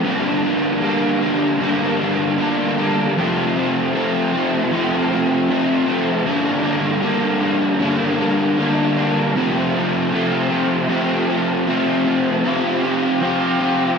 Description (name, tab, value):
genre	rock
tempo	78 BPM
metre	4/4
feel	straight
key	F major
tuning	A4 = 443 Hz
part	crunchy overdriven guitar	solo	0.0-14.0 s	F2 to G4	-16 LUFS	equal	analog chorus, ping-pong delay
room	wet lush hall reverb, RT60 2.9 s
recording	dreamy mix soaked in reverb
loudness	-16 LUFS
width	side -6 dB against mid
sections	0.0-14.0 A section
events	none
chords	0.0 Gm; 3.2 F; 6.3 Gm; 9.4 F; 12.4 Csus4